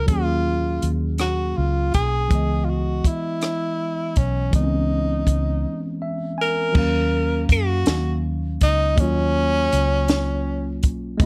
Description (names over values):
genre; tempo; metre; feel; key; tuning
slow six-eight R&B; 54 BPM (dotted quarters); 6/8; straight; Eb phrygian; A4 = 440 Hz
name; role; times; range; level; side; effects
breathy tenor saxophone; melody; 0.0-10.8 s; Db4 to Bb4; -26 LUFS; equal; slapback echo, plate reverb
tine electric piano; accompaniment; 0.0-11.3 s; Fb3 to Ab5; -29 LUFS; equal; none
vintage muted fingered electric bass; bass; 0.0-11.3 s; Cb2 to Gb2; -25 LUFS; equal; none
compact cocktail drum kit; drums; 0.1-11.3 s; crash cymbal, hi-hat, kick drum, rim click, snare drum; -22 LUFS; equal; none
room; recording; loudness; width
light reverb; none; -21 LUFS; mono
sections
0.0-6.8 A section; 6.8-11.3 B section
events
break 5.6-6.8; tine electric piano fill 5.6-6.8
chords
0.0 Ebm9; 2.3 Dbm9; 6.8 Ebm9